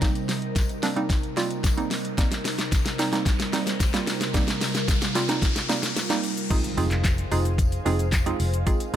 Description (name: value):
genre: dance-pop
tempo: 111 BPM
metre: 4/4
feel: straight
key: F minor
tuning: A4 = 440 Hz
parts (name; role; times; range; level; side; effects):
- hollow square pluck; accompaniment; 0.0-9.0 s; G3 to Ab4; -28 LUFS; right 4 dB; chorus, sidechain pumping
- glassy FM pad; sustained chords; 0.0-9.0 s; C3 to F5; -31 LUFS; right 1 dB; ensemble chorus, built-in reverb, sidechain pumping
- smooth R&B drum kit; drums; 0.0-9.0 s; crash cymbal, handclaps, hi-hat, kick drum, shaker, snare drum; -24 LUFS; left 1 dB; none
- tambourine; percussion; 0.0-9.0 s; none; -43 LUFS; left 11 dB; none
- riser and impact; sound effects; 1.2-8.7 s; none; -35 LUFS; left 1 dB; none
- vintage muted fingered electric bass; bass; 6.8-9.0 s; F1; -25 LUFS; left 1 dB; sidechain pumping
room: digital ambience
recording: none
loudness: -22 LUFS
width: side -11 dB against mid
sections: 0.0-6.5 A section; 6.5-9.0 B section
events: build-up 0.0-6.5; drum fill 0.0-6.5; riser 1.2-6.5; drop 6.5-9.0; impact 6.5-8.7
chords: 0.0 Cm7; 2.2 Eb6; 6.5 Fm7